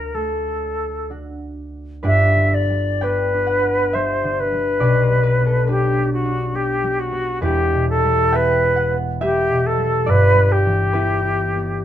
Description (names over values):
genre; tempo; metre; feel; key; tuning
classical, romantic duo for flute and harp; 60-70 BPM; 3/4; rubato; G major; A4 = 440 Hz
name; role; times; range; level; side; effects
silver concert flute; melody; 0.0-11.8 s; F#4 to E5; -19 LUFS; left 1 dB; none
concert harp; accompaniment; 0.0-11.8 s; E1 to G5; -20 LUFS; equal; none
room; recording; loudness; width
light reverb; minimal, uncompressed stereo recording; -16 LUFS; side -11 dB against mid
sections
0.0-2.1 A section; 2.1-11.8 B section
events
none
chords
0.0 D; 2.1 G; 4.8 G/B; 7.4 Em; 10.1 Em/G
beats
0.15 1.10 | 2.06 3.03 3.95 | 4.83 5.69 6.55 | 7.43 8.35 9.22 | 10.09 10.95